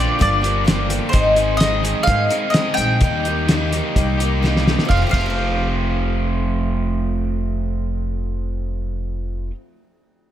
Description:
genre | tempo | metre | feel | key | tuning
folk rock and heartland rock | 128 BPM | 4/4 | straight | F major | A4 = 440 Hz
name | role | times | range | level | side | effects
mandolin | melody | 0.0-9.5 s | C5 to G5 | -22 LUFS | right 1 dB | slapback echo
picked swing-style acoustic guitar | accompaniment | 0.0-9.7 s | Ab2 to Ab4 | -24 LUFS | left 3 dB | slapback echo
crunchy overdriven guitar | riff | 0.0-9.5 s | Ab2 to Ab4 | -24 LUFS | right 2 dB | none
upright bass | bass | 0.0-9.5 s | F1 to Ab2 | -22 LUFS | equal | none
cloth-damped thuddy drum kit | drums | 0.2-5.3 s | hi-hat, kick drum, ride cymbal, snare drum | -20 LUFS | equal | none
room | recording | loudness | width
moderate lush hall reverb, RT60 2.1 s | big arena sound | -17 LUFS | side -11 dB against mid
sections
0.0-4.9 A section; 4.9-8.7 B section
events
drum fill 4.4-4.9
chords
0.0 Bb6; 1.1 Ab; 3.0 Eb; 4.9 Fadd9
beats
0.20 0.66 | 1.13 1.60 2.07 2.54 | 3.01 3.48 3.95 4.42 | 4.89 5.36 5.83 6.30 | 6.77 7.25 7.72 8.19

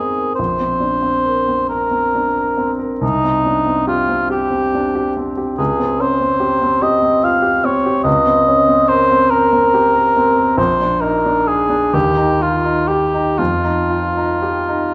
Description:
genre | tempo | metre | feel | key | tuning
classical, impressionist duo for cor anglais and grand piano | 39-49 BPM (dotted quarters) | 6/8 | rubato | unclear | A4 = 440 Hz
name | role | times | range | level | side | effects
mellow cor anglais | melody | 0.0-14.9 s | Eb4 to F5 | -18 LUFS | equal | none
warm baby grand piano | accompaniment | 0.0-14.9 s | Ab1 to Bb4 | -21 LUFS | equal | none
room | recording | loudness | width
wet recital hall reverb, RT60 1.4 s | none | -16 LUFS | mono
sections
0.0-14.9 A section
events
none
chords
0.4 Bbadd9; 3.0 Cmadd9; 5.6 Dbmaj7#11; 8.1 Bbm69/Db; 10.6 Bb7; 11.9 Ebadd9; 13.4 Fsus2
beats
| 0.39 1.70 | 3.02 4.31 | 5.59 6.83 | 8.06 9.32 | 10.57 11.94 | 13.39 14.93

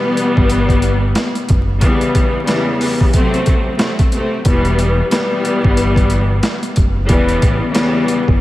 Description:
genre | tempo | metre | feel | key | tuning
hip hop, boom-bap hip-hop | 91 BPM | 4/4 | swing 61% on 16ths | E minor | A4 = 440 Hz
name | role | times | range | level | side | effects
warm studio string section | accompaniment | 0.0-8.4 s | E2 to C4 | -16 LUFS | left 2 dB | cassette tape, high-pass filter, low-pass filter
boom bap sampler-style drum kit | drums | 0.2-8.4 s | hi-hat, kick drum, snare drum | -16 LUFS | equal | overdrive
deep dub fingered electric bass | bass | 0.4-8.4 s | E1 to A1 | -17 LUFS | equal | none
room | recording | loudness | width
moderate cathedral reverb, RT60 5.1 s | dreamy mix soaked in reverb, vinyl crackle | -12 LUFS | side -16 dB against mid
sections
0.0-8.4 A section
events
none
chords
0.0 Em; 1.8 Em6; 3.1 F#dim; 4.5 Em; 7.1 A7/E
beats
0.50 1.16 | 1.82 2.48 3.14 3.79 | 4.45 5.11 5.77 6.43 | 7.09 7.75

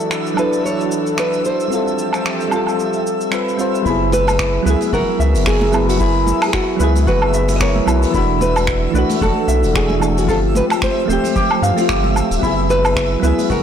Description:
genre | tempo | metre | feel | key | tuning
sunset chillout | 112 BPM | 4/4 | swing 57% on 16ths | unclear | A4 = 443 Hz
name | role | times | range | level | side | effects
nylon-string guitar | melody | 0.0-13.6 s | F#4 to D#5 | -21 LUFS | equal | ping-pong delay
soft electric-piano-like synth keys | accompaniment | 0.0-13.6 s | E3 to C5 | -19 LUFS | equal | chorus, auto-pan, ping-pong delay
airy breathy pad | sustained chords | 0.0-3.8 s | E3 to A4 | -25 LUFS | equal | chorus
vintage brush drum kit | drums | 0.0-13.6 s | cabasa, finger snaps, hi-hat, woodblock | -24 LUFS | right 1 dB | soft clipping on snare
twinkling granular texture | texture | 0.0-13.6 s | E5 | -30 LUFS | right 1 dB | built-in reverb
concert harp | arpeggios | 3.9-13.6 s | E4 to F5 | -23 LUFS | left 3 dB | ping-pong delay
round analog bass | bass | 3.9-13.6 s | D1 to G2 | -18 LUFS | equal | none
electronic kick drum | drums | 3.9-13.6 s | none | -23 LUFS | equal | overdrive
congas | percussion | 4.1-13.6 s | none | -27 LUFS | right 2 dB | none
room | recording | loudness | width
moderate concert hall reverb, RT60 2.3 s | blown-out, overdriven recording, overdrive | -14 LUFS | side -8 dB against mid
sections
0.0-3.9 A section; 3.9-13.6 B section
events
none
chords
0.0 E9sus4; 1.7 G9sus4; 3.9 F#9sus4; 8.1 E9sus4; 10.3 G9sus4; 12.4 F#9sus4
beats
0.11 0.64 1.18 | 1.71 2.25 2.79 3.32 | 3.86 4.39 4.93 5.46 | 6.00 6.54 7.07 7.61 | 8.14 8.68 9.21 9.75 | 10.29 10.82 11.36 11.89 | 12.43 12.96 13.50

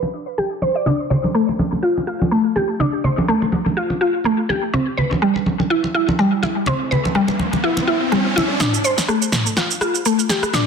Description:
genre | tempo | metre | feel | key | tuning
afro house | 124 BPM | 4/4 | swing 56% on 16ths | D dorian | A4 = 440 Hz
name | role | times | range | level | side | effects
mallet-like synth pluck | arpeggios | 0.0-10.7 s | G3 to D5 | -18 LUFS | left 1 dB | analog chorus, tape echo
congas | percussion | 0.0-8.5 s | none | -21 LUFS | right 1 dB | none
riser | sound effects | 5.9-8.6 s | none | -25 LUFS | equal | none
house drum kit | drums | 8.6-10.6 s | rim click, shaker, snare drum, toms | -19 LUFS | right 1 dB | low-pass filter on snare, low-pass filter on toms, low-pass filter on perc
room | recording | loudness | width
moderate digital room reverb, RT60 0.9 s | dense, heavily limited modern master, low-pass filter | -16 LUFS | side -6 dB against mid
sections
0.0-8.6 A section; 8.6-10.7 B section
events
filter sweep on synth pluck 0.0-8.6; filter sweep 0.0-8.6; riser 5.9-8.6; build-up 8.6-10.7; drum fill 8.6-10.7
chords
none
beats
0.38 | 0.86 1.35 1.83 2.31 | 2.80 3.28 3.77 4.25 | 4.73 5.22 5.70 6.18 | 6.67 7.15 7.64 8.12 | 8.60 9.09 9.57 10.06 | 10.54

